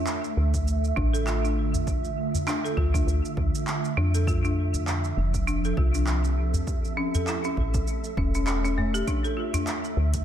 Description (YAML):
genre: organic downtempo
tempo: 100 BPM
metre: 4/4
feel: swing 56% on 16ths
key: D minor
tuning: A4 = 441 Hz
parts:
  - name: ethereal airy pad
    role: sustained chords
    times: 0.0-10.2 s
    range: D3 to E5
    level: -32 LUFS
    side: right 3 dB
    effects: ensemble chorus, built-in reverb, sidechain pumping
  - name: folk marimba with hard mallets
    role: arpeggios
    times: 0.0-10.1 s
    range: A3 to A4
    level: -31 LUFS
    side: left 2 dB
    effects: low-pass filter, ping-pong delay
  - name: wind-like tuned noise texture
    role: texture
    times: 0.4-10.2 s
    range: E5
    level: -38 LUFS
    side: right 4 dB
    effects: built-in reverb
  - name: deep house drum kit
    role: drums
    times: 0.1-10.2 s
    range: handclaps, hi-hat, shaker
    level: -35 LUFS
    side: right 1 dB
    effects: overdrive, studio reverb
  - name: woody FM bass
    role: bass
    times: 0.4-10.2 s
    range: E1 to F2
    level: -25 LUFS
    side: equal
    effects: sidechain pumping
  - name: electronic kick drum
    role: drums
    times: 0.5-10.2 s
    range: none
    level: -29 LUFS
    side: equal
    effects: overdrive, studio reverb
  - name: udu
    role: percussion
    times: 1.7-9.6 s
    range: none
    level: -30 LUFS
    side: left 1 dB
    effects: none
room: light reverb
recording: none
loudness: -23 LUFS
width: side -10 dB against mid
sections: 0.0-10.2 A section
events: none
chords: 0.0 Dm; 4.3 F69; 6.7 A7; 9.1 Dm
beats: 0.07 0.67 1.27 | 1.87 2.47 3.07 3.67 | 4.27 4.87 5.47 6.07 | 6.67 7.27 7.87 8.47 | 9.07 9.67